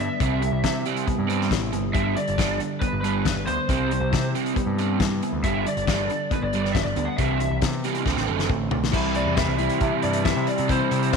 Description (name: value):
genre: indie rock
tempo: 137 BPM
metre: 4/4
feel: straight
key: unclear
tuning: A4 = 440 Hz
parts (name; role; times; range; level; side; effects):
- lead guitar through a small cranked amp; melody; 0.0-11.2 s; B4 to F#5; -28 LUFS; right 1 dB; overdrive
- crunchy overdriven guitar; riff; 0.0-11.2 s; G2 to E4; -27 LUFS; right 15 dB; analog chorus
- mellow electric guitar; riff; 0.0-11.2 s; C3 to A4; -28 LUFS; left 11 dB; spring reverb
- growling picked electric bass; bass; 0.0-11.2 s; F#1 to C3; -28 LUFS; right 1 dB; overdrive
- loose indie drum kit; drums; 0.2-11.2 s; crash cymbal, hi-hat, kick drum, snare drum, toms; -27 LUFS; left 3 dB; none
room: light reverb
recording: 1960s-style stereo with parts hard left and right, faint mains hum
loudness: -21 LUFS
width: side -5 dB against mid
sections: 0.0-8.9 A section; 8.9-11.2 B section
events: drum fill 8.1-8.9; lead electric guitar solo 8.9-11.2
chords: 0.2 Cmaj7; 1.9 Gadd9; 3.7 Cmaj7; 5.4 Gadd9; 7.2 Cmaj7; 8.1 D7; 8.9 C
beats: | 0.20 0.63 1.07 1.51 | 1.94 2.38 2.82 3.25 | 3.69 4.13 4.56 5.00 | 5.43 5.87 6.31 6.75 | 7.18 7.62 8.06 8.50 | 8.94 9.37 9.81 10.25 | 10.69 11.13